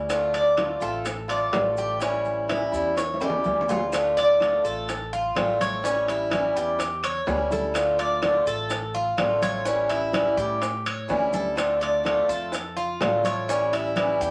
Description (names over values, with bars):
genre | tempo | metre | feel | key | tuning
latin, Cuban son and guajira | 125 BPM | 4/4 | straight | D minor | A4 = 439 Hz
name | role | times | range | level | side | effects
picked swing-style acoustic guitar | accompaniment | 0.0-14.3 s | D3 to F4 | -27 LUFS | equal | none
upright bass | bass | 0.0-14.3 s | A1 to A2 | -39 LUFS | equal | none
bongos | percussion | 0.1-14.2 s | none | -36 LUFS | equal | none
claves | percussion | 0.1-14.2 s | none | -46 LUFS | equal | none
congas | percussion | 0.1-14.3 s | none | -39 LUFS | equal | none
maracas | percussion | 0.1-14.3 s | none | -47 LUFS | equal | none
timbales | percussion | 0.1-14.2 s | none | -35 LUFS | equal | none
Cuban tres | arpeggios | 0.3-14.3 s | C#4 to D5 | -29 LUFS | equal | none
room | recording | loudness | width
wet studio reverb, RT60 0.6 s | none | -24 LUFS | mono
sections
0.0-3.9 A section; 3.9-14.3 B section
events
drum fill 3.0-3.9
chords
0.1 Dm7; 2.0 A7; 3.9 Dm7; 5.8 A7; 7.8 Dm7; 9.7 A7; 11.6 Dm7; 13.5 A7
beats
| 0.10 0.58 1.06 1.54 | 2.02 2.49 2.97 3.45 | 3.93 4.41 4.88 5.36 | 5.84 6.32 6.79 7.27 | 7.75 8.23 8.71 9.18 | 9.66 10.14 10.62 11.10 | 11.57 12.05 12.53 13.01 | 13.49 13.97